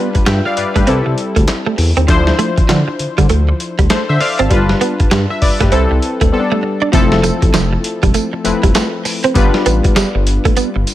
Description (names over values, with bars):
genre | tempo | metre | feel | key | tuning
R&B, new jack swing | 99 BPM | 4/4 | swing 62% on 16ths | unclear | A4 = 439 Hz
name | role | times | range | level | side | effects
warm analog keys | accompaniment | 0.0-10.9 s | F3 to A5 | -17 LUFS | left 3 dB | chorus
direct-recorded clean electric guitar | riff | 0.0-10.8 s | F3 to D4 | -17 LUFS | right 5 dB | ensemble chorus
dusty soul sampler-style drum kit | drums | 0.1-10.9 s | handclaps, hi-hat, kick drum, snare drum, tambourine | -15 LUFS | equal | none
smooth synth bass | bass | 0.2-10.8 s | E1 to D3 | -16 LUFS | equal | none
room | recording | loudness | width
little or no reverb | none | -11 LUFS | side -14 dB against mid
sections
0.0-6.9 A section; 6.9-10.9 B section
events
break 6.3-6.9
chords
0.0 G7; 0.9 C6; 2.1 Dm9; 4.5 G7; 5.7 C6; 6.3 A9sus4; 6.9 Fmaj7; 9.4 G7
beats
0.26 0.87 1.48 | 2.08 2.69 3.29 3.90 | 4.51 5.11 5.72 6.33 | 6.93 7.54 8.14 8.75 | 9.36 9.96 10.57